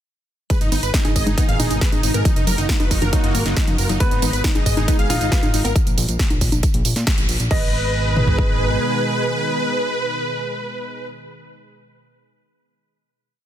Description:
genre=uplifting trance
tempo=137 BPM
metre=4/4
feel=straight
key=G# dorian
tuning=A4 = 441 Hz
part: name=dense compressed supersaw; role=melody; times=0.5-11.1 s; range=D#4 to E#5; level=-23 LUFS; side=right 1 dB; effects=sidechain pumping, dub echo
part: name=lush unison pad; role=sustained chords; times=0.9-11.1 s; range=B2 to G#4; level=-27 LUFS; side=right 1 dB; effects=chorus, sidechain pumping
part: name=wide unison pluck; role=arpeggios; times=0.5-7.7 s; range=E#3 to G#4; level=-30 LUFS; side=left 1 dB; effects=sidechain pumping, ping-pong delay
part: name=big-room dance drum kit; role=drums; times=0.5-8.5 s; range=kick drum, toms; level=-19 LUFS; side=equal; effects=none
part: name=big-room dance drum kit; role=drums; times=0.5-7.6 s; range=congas, crash cymbal, hi-hat, snare drum, tambourine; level=-24 LUFS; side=right 1 dB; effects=none
part: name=fat analog bass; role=bass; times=0.6-8.8 s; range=F#1 to A#2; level=-22 LUFS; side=equal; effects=sidechain pumping
part: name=clear baby grand piano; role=second line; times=4.0-11.1 s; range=B3 to E#5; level=-29 LUFS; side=equal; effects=ping-pong delay
room=little or no reverb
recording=dense, heavily limited modern master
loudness=-16 LUFS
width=side -11 dB against mid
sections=0.5-7.5 drop; 7.5-11.0 final chord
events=drop 0.5-7.5; band accent 7.1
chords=0.5 G#m; 2.3 D#madd9/F#; 4.0 G#m; 5.8 N.C.; 7.5 G#m

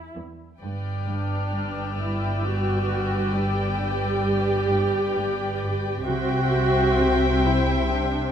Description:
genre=cinematic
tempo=66 BPM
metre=3/4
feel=straight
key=unclear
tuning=A4 = 443 Hz
part: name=muted studio violin section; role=melody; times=0.0-8.3 s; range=G5 to G#5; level=-31 LUFS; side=left 5 dB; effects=none
part: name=muted chamber violin section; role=second line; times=0.0-8.3 s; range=B4 to E5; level=-31 LUFS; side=left 3 dB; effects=none
part: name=muted chamber viola section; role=accompaniment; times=0.0-8.3 s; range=D4 to G4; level=-26 LUFS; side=right 2 dB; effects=none
part: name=muted chamber cello section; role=riff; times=0.2-8.2 s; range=E2 to C3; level=-33 LUFS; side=equal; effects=none
part: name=muted chamber cello section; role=bass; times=0.6-8.3 s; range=G2 to C3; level=-28 LUFS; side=equal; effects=none
part: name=muted chamber double bass section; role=bass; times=0.6-8.3 s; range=G1 to C2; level=-28 LUFS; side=right 1 dB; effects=none
part: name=muted chamber violin section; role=texture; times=0.6-5.6 s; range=D6 to E#6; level=-37 LUFS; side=left 7 dB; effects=none
room=light reverb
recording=none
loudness=-21 LUFS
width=side -8 dB against mid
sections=0.0-8.3 A section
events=none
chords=0.0 E; 0.6 G; 6.1 C

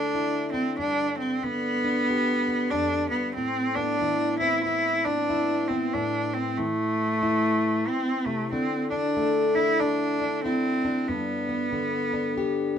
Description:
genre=acoustic folk duo or small band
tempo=93 BPM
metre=4/4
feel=swing 61% on 8ths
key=A minor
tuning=A4 = 439 Hz
part: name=rich cello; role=melody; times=0.0-12.8 s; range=A3 to E4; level=-25 LUFS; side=right 1 dB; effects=none
part: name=fingerpicked plugged-in steel-string acoustic guitar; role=accompaniment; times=0.0-12.8 s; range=F2 to G4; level=-28 LUFS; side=left 2 dB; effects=none
room=moderate studio reverb, RT60 0.5 s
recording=minimal, uncompressed stereo recording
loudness=-23 LUFS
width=side -8 dB against mid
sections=0.0-12.8 A section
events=none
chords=0.0 Dsus2; 0.8 G; 3.4 Amadd9; 8.5 Dsus2; 11.1 G

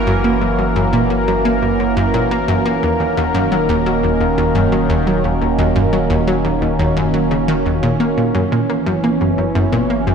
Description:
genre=ambient, sequencer-driven space music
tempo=87 BPM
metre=4/4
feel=straight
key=unclear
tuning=A4 = 440 Hz
part: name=sweeping resonant pad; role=sustained chords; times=0.0-10.1 s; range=D#3 to B4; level=-16 LUFS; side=right 1 dB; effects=chorus
part: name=warm sub bass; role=bass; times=0.0-10.1 s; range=D#1 to F#1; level=-25 LUFS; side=left 1 dB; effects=none
part: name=analog pluck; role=riff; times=0.1-10.1 s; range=D#2 to A#3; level=-18 LUFS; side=equal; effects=chorus, analog delay
room=wet scoring stage reverb, RT60 1.8 s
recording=dark, warm production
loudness=-14 LUFS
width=side -6 dB against mid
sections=0.0-8.3 A section; 8.3-10.1 B section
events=none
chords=0.0 F#7; 2.8 D#m7; 8.3 F#7sus4

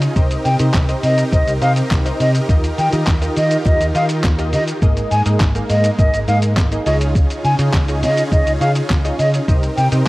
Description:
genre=dance-pop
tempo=103 BPM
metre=4/4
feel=straight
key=Ab major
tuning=A4 = 443 Hz
part: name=funky polysynth comp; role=accompaniment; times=0.0-10.1 s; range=Bb3 to F5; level=-25 LUFS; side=equal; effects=chorus, sidechain pumping
part: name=supersaw chords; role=sustained chords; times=0.0-10.1 s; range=C3 to Bb4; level=-25 LUFS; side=right 1 dB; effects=sidechain pumping
part: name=vintage muted fingered electric bass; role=bass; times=0.0-10.0 s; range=Ab1 to Eb3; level=-18 LUFS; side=equal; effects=sidechain pumping
part: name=lo-fi sampler-style drum kit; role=drums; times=0.0-10.1 s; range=handclaps, hi-hat, kick drum, shaker, snare drum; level=-18 LUFS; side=equal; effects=none
part: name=mellow hollow silver concert flute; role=melody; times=0.5-9.9 s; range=Eb5 to Ab5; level=-20 LUFS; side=equal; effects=cassette tape, analog delay
part: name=group handclap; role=percussion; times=0.7-9.0 s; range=none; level=-37 LUFS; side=left 8 dB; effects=none
room=digital ambience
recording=home recording on cassette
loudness=-14 LUFS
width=side -20 dB against mid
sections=0.0-10.1 A section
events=none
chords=0.2 Cm7; 2.5 Ebadd9; 4.8 Absus2; 6.9 Dbadd9; 9.5 Cm7

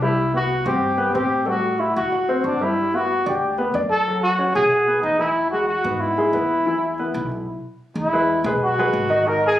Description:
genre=Afro-Cuban jazz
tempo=185 BPM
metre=4/4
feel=straight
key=E major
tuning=A4 = 440 Hz
part: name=breathy trumpet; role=melody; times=0.0-9.6 s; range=D4 to A#4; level=-20 LUFS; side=equal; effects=none
part: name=dark baby grand piano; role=accompaniment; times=0.0-9.5 s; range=D#3 to F#5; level=-23 LUFS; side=left 1 dB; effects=none
part: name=upright bass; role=bass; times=0.0-9.6 s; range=G1 to A2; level=-29 LUFS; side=equal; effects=none
room=moderate club reverb, RT60 0.7 s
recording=recorded on a phone in the room, club reverb, compression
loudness=-18 LUFS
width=side -12 dB against mid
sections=0.0-8.0 A section; 8.0-9.6 B section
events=stop 7.3-8.0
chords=0.2 C5; 1.5 A7sus4; 2.1 D7; 2.8 Gmaj7; 4.1 F#5; 4.7 B5; 5.4 E; 8.0 Emaj9

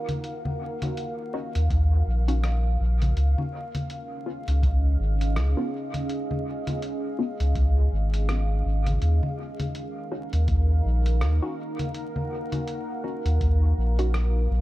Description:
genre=ambient dub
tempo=82 BPM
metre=4/4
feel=swing 58% on 16ths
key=Eb minor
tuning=A4 = 441 Hz
part: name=deep dark ambient pad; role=sustained chords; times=0.0-14.6 s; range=Db4 to Gb5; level=-33 LUFS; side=right 1 dB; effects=chorus, built-in reverb
part: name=lo-fi sampler-style drum kit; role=drums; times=0.1-14.3 s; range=congas, hi-hat, rim click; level=-33 LUFS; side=left 1 dB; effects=studio reverb, dub echo
part: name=filtered dub chord stab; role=stabs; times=1.3-14.1 s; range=Cb4 to Gb4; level=-34 LUFS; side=left 2 dB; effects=phaser, wide subtle chorus, dub echo
part: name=warm sub bass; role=bass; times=1.6-14.6 s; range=Ab1 to Eb2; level=-21 LUFS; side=equal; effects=none
part: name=electronic kick drum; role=drums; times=1.7-13.6 s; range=none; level=-28 LUFS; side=equal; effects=studio reverb
room=little or no reverb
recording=dark, warm production, vinyl crackle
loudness=-23 LUFS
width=side -16 dB against mid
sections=0.0-14.6 A section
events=none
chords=0.0 Ebm; 3.2 Db; 9.0 Ebm7

